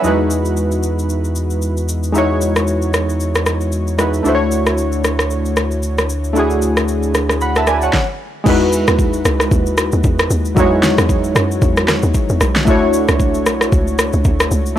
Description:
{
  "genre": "amapiano",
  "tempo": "114 BPM",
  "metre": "4/4",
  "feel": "swing 58% on 16ths",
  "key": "E major",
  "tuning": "A4 = 438 Hz",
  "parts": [
    { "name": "warm analog keys", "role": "accompaniment", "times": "0.0-14.8 s", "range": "F#3 to B5", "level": "-17 LUFS", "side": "equal", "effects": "chorus" },
    { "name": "warm sub bass", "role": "bass", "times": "0.0-7.9 s", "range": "D2 to E2", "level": "-20 LUFS", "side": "equal", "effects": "none" },
    { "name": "smooth R&B drum kit", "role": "drums", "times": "0.0-14.8 s", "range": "crash cymbal, kick drum, rim click, shaker, snare drum", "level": "-17 LUFS", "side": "equal", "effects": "none" },
    { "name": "hollow log drum bass", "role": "bass", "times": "8.5-14.8 s", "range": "B1 to F#2", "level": "-18 LUFS", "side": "equal", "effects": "none" }
  ],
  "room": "digital ambience",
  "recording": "dry, gritty hardware recording",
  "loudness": "-13 LUFS",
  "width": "side -11 dB against mid",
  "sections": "0.0-8.5 A section; 8.5-14.8 B section",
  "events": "stop 7.9-8.5; drop 8.5-14.8",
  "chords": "0.0 Emaj9; 4.3 Dmaj9; 8.5 Emaj9; 12.7 Dmaj9"
}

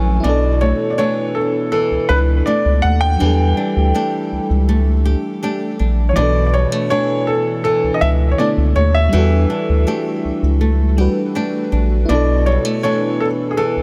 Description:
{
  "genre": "R&B",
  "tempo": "81 BPM",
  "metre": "4/4",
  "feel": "straight",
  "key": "B minor",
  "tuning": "A4 = 440 Hz",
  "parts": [
    { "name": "FM electric piano with soft pad layer", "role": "accompaniment", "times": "0.0-13.8 s", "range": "D3 to B4", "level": "-24 LUFS", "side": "equal", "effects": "chorus" },
    { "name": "flamenco guitar", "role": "arpeggios", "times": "0.0-13.8 s", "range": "F#2 to G4", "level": "-24 LUFS", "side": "equal", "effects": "tape echo" },
    { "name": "round analog bass", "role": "bass", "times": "0.0-13.8 s", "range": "A#1 to E2", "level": "-17 LUFS", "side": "equal", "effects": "none" },
    { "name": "warm concert grand piano", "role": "melody", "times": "0.2-13.8 s", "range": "G#4 to G5", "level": "-21 LUFS", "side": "equal", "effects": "tape echo" }
  ],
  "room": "light reverb, small room ambience",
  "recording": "none",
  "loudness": "-16 LUFS",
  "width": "mono",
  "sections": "0.2-13.8 A section",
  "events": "none",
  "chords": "0.2 Bm11; 3.2 Em7; 6.2 Bm11; 9.1 Em11; 12.1 Bm11"
}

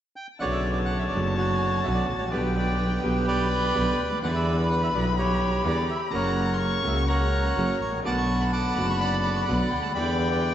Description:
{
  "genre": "tango",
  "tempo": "126 BPM",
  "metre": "4/4",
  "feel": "rubato",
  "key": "B minor",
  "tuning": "A4 = 440 Hz",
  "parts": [
    { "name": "bandoneon", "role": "melody", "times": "0.2-10.5 s", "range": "F#4 to D6", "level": "-27 LUFS", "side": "right 2 dB", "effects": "analog delay" },
    { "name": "warm violin", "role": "second line", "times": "0.4-10.5 s", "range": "G5 to C#6", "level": "-32 LUFS", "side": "left 6 dB", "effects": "analog delay" },
    { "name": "bright concert grand piano", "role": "accompaniment", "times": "0.4-10.5 s", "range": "F#1 to G4", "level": "-29 LUFS", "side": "equal", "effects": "none" },
    { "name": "rich double bass", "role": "bass", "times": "0.4-10.5 s", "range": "F#1 to E2", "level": "-27 LUFS", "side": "equal", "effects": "none" }
  ],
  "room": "moderate lush hall reverb, RT60 2.7 s",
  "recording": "dreamy mix soaked in reverb, nothing above 7.9 kHz",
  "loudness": "-22 LUFS",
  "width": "side -10 dB against mid",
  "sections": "0.4-10.5 A section",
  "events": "none",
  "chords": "0.4 Bmadd9; 2.3 G/B; 4.2 Em7; 6.1 F#; 8.0 Bm7; 10.0 Em7"
}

